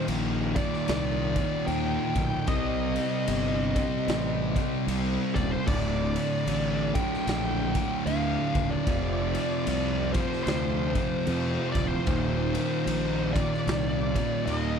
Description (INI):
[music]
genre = stoner and doom metal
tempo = 75 BPM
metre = 4/4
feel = swing 60% on 8ths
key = unclear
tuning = A4 = 435 Hz
[part]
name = fuzz lead guitar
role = melody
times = 0.0-14.8 s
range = C5 to G5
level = -32 LUFS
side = equal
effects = wah, distortion, tape echo
[part]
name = raw garage guitar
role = riff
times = 0.0-14.8 s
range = D2 to C4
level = -35 LUFS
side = equal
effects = overdrive
[part]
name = thick fuzz guitar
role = riff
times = 0.0-14.8 s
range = D2 to C4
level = -32 LUFS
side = left 13 dB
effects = distortion
[part]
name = thick fuzz guitar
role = riff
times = 0.0-14.8 s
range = D2 to C4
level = -32 LUFS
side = right 11 dB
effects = distortion
[part]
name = fuzz fingered electric bass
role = bass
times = 0.1-14.8 s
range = D1 to F2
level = -31 LUFS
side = equal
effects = overdrive
[part]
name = raw garage drum kit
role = drums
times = 0.1-14.7 s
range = crash cymbal, kick drum, ride cymbal, snare drum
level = -33 LUFS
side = equal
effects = none
[sound]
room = little or no reverb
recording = none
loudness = -25 LUFS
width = side -7 dB against mid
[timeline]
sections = 0.0-14.8 A section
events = none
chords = 0.0 Eb; 2.5 Cm; 5.7 D5; 8.9 F5; 12.1 Eb5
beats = 0.08 0.88 1.68 | 2.48 3.28 4.08 4.88 | 5.68 6.47 7.28 8.07 | 8.87 9.67 10.47 11.27 | 12.07 12.87 13.67 14.47